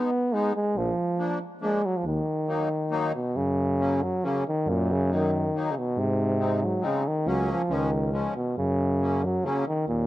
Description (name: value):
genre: alpine folk, alpine dance band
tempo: 138 BPM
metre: 3/4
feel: straight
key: Eb minor, F# major from 3.4 s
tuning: A4 = 438 Hz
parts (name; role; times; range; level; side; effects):
- clear euphonium; melody; 0.0-10.1 s; A#2 to Cb4; -26 LUFS; equal; none
- accordion; accompaniment; 0.0-9.7 s; F3 to Eb4; -32 LUFS; left 3 dB; light tremolo tuning
- warm tuba; bass; 0.8-10.1 s; Bb1 to G#2; -27 LUFS; equal; none
room: light reverb, small room ambience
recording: dry, close 1970s-style studio recording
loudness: -24 LUFS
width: side -15 dB against mid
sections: 0.0-3.4 A section; 3.4-10.1 B section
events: none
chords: 0.0 Abm; 0.8 Bb; 2.1 Ebm; 3.4 F#; 4.7 D#m/F#; 6.0 G#; 7.3 F#/C#; 7.7 C#add9; 8.6 F#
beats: 0.33 | 0.76 1.19 1.62 | 2.05 2.48 2.92 | 3.37 3.81 4.24 | 4.68 5.11 5.54 | 5.97 6.40 6.84 | 7.27 7.71 8.14 | 8.58 9.02 9.45 | 9.89